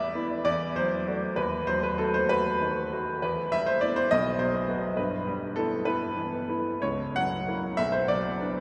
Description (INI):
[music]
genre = classical, romantic character piece for solo piano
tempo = 66 BPM (dotted quarters)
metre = 6/8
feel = uneven beats, rubato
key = E minor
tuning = A4 = 440 Hz
[part]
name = clear baby grand piano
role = solo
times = 0.0-8.6 s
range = B1 to F#5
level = -28 LUFS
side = equal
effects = none
[sound]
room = wet cathedral reverb, RT60 6.4 s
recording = recorded in a church or concert hall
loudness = -28 LUFS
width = mono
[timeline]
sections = 0.0-8.6 A section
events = none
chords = 0.5 F#m7b5/E; 1.4 B7/D#; 3.2 Em; 4.1 B5; 5.0 Em/G; 6.8 F#7/C#; 7.8 Bm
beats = 0.46 | 1.37 2.30 | 3.23 4.11 | 4.98 5.85 | 6.82 7.78